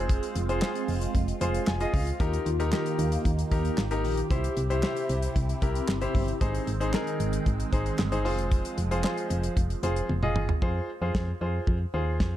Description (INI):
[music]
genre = synth-pop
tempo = 114 BPM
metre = 4/4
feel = straight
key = F minor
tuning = A4 = 441 Hz
[part]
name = clear baby grand piano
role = accompaniment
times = 0.0-12.4 s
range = Eb4 to C6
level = -31 LUFS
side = left 2 dB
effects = none
[part]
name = phased analog pad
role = sustained chords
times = 0.0-10.6 s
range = C3 to G4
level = -33 LUFS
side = right 2 dB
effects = phaser, chorus
[part]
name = solid FM bass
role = bass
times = 0.0-12.4 s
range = F1 to F2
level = -29 LUFS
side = equal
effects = none
[part]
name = damped 70s drum kit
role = drums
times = 0.1-12.3 s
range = handclaps, hi-hat, kick drum, snare drum, toms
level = -29 LUFS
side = equal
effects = none
[sound]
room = light reverb, small room ambience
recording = dark, warm production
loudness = -25 LUFS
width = side -12 dB against mid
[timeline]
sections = 0.0-10.6 A section; 10.6-12.4 B section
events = grand piano fill 1.1-2.2; drum fill 10.1-10.6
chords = 0.0 Fm; 2.2 Ebadd9; 4.3 C; 6.4 Ab; 8.3 Fm